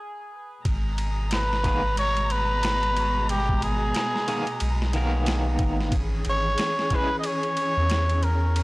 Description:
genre	trip hop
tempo	91 BPM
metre	4/4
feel	swing 60% on 16ths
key	G# minor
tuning	A4 = 440 Hz
part	dark chamber string section	sustained chords	0.6-8.6 s	B2 to A#5	-32 LUFS	left 1 dB	none
part	soft dub sub bass	bass	0.7-8.6 s	G#1 to E2	-25 LUFS	equal	none
part	boom bap sampler-style drum kit	drums	0.7-8.6 s	kick drum, ride cymbal, snare drum	-30 LUFS	equal	none
part	trumpet with cup mute	melody	1.3-8.6 s	G4 to D#5	-26 LUFS	equal	tape echo
part	electric guitar at the edge of break-up	accompaniment	1.6-7.1 s	D#3 to A#4	-30 LUFS	equal	tremolo, tape echo
room	little or no reverb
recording	dry, gritty hardware recording, cassette tape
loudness	-22 LUFS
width	side -22 dB against mid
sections	0.7-8.6 A section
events	break 0.0-0.7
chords	0.0 N.C.; 0.7 G#madd9; 5.9 C#m/G#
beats	| 0.65 1.31 1.97 2.63 | 3.29 3.95 4.61 5.27 | 5.92 6.58 7.24 7.90 | 8.56

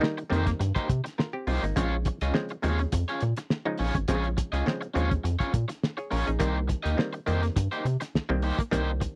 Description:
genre	funk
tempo	104 BPM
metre	4/4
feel	straight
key	Bb dorian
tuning	A4 = 440 Hz
part	crunchy overdriven guitar	accompaniment	0.0-9.0 s	Bb3 to Eb5	-34 LUFS	equal	harmonic tremolo
part	muted clav	stabs	0.0-9.1 s	C3 to Db5	-35 LUFS	equal	none
part	cloth-damped thuddy drum kit	drums	0.0-9.2 s	hi-hat, kick drum, snare drum	-32 LUFS	equal	none
part	rubbery square bass	bass	0.3-9.1 s	Ab1 to C3	-30 LUFS	equal	none
room	little or no reverb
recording	dry, close 1970s-style studio recording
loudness	-28 LUFS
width	mono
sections	0.0-9.2 A section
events	none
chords	0.0 Cm7; 1.8 Bbm7; 6.4 Cm7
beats	0.02 0.60 1.18 | 1.76 2.34 2.92 3.50 | 4.08 4.66 5.24 5.82 | 6.40 6.98 7.56 8.14 | 8.72

